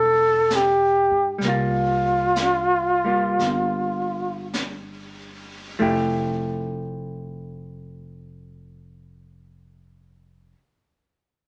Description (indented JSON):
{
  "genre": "jazz ballad",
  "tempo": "45-70 BPM",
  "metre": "4/4",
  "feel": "swing 67% on 8ths",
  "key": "F major",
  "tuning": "A4 = 444 Hz",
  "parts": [
    { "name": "breathy flugelhorn", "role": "melody", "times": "0.0-4.5 s", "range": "F4 to A4", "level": "-22 LUFS", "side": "equal", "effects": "none" },
    { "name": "hollow-body jazz guitar", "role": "accompaniment", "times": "0.0-10.6 s", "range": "F3 to G4", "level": "-29 LUFS", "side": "equal", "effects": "none" },
    { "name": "upright bass", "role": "bass", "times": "0.0-10.5 s", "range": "E1 to G2", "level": "-35 LUFS", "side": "equal", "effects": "none" },
    { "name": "jazz brush drum kit", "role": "drums", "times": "0.5-6.9 s", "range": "brushed snare drum, hi-hat, snare drum", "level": "-35 LUFS", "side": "equal", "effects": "none" }
  ],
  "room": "moderate studio reverb, RT60 0.8 s",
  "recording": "none",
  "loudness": "-22 LUFS",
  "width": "mono",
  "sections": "0.0-5.8 A section; 5.8-11.1 B section",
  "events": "slowing down 0.0-5.8",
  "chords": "0.0 Am7; 1.4 C7sus4; 5.8 Fmaj9",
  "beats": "0.50 | 1.40 2.36 3.39 4.53 | 5.80 7.12 8.44 9.75"
}